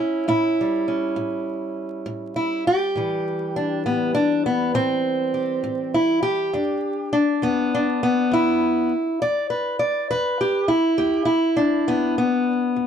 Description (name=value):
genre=acoustic country blues, solo or duo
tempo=67 BPM (dotted quarters)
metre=12/8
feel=straight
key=unclear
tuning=A4 = 439 Hz
part: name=fingerpicked acoustic archtop guitar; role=solo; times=0.0-12.9 s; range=E2 to D5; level=-19 LUFS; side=equal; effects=none
room=light reverb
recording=dark, warm production, vinyl crackle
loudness=-19 LUFS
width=side -8 dB against mid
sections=0.0-12.9 A section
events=none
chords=0.0 A7; 3.0 Am7; 6.5 E7(no3)